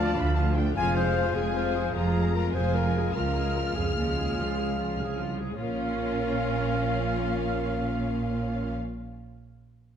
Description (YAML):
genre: cinematic, heroic adventure film score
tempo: 101 BPM (dotted quarters)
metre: 12/8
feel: straight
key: Bb minor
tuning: A4 = 440 Hz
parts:
  - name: warm symphonic violin section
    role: melody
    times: 0.0-8.7 s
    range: D5 to F6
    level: -38 LUFS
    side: left 4 dB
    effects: none
  - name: rich studio violin section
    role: second line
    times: 0.0-8.7 s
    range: Db4 to A5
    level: -38 LUFS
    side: left 5 dB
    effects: none
  - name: warm clarinet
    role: second line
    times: 0.0-8.7 s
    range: Ab4 to A5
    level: -34 LUFS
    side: left 4 dB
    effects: none
  - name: rich symphonic viola section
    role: accompaniment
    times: 0.0-8.7 s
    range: F3 to Ab4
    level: -36 LUFS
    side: left 1 dB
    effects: none
  - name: mellow French horn section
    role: sustained chords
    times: 0.0-8.7 s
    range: C4 to F4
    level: -36 LUFS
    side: left 8 dB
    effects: none
  - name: mellow trombone section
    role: sustained chords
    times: 0.0-8.7 s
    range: F3 to Bb3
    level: -36 LUFS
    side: right 3 dB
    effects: none
  - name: mellow trumpet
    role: stabs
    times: 0.0-8.7 s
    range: F5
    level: -35 LUFS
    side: right 1 dB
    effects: none
  - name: rich symphonic double bass section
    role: bass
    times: 0.0-8.7 s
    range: F1 to D2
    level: -31 LUFS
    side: right 3 dB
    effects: none
  - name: warm studio cello section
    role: bass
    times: 0.0-8.7 s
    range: C2 to Bb2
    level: -31 LUFS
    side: right 2 dB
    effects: none
room: moderate scoring stage reverb, RT60 1.8 s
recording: dark, warm production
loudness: -25 LUFS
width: side -8 dB against mid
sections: 0.0-5.6 A section; 5.6-8.0 B section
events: none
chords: 0.0 Dm; 0.8 Fm; 3.2 Db; 5.6 Bbm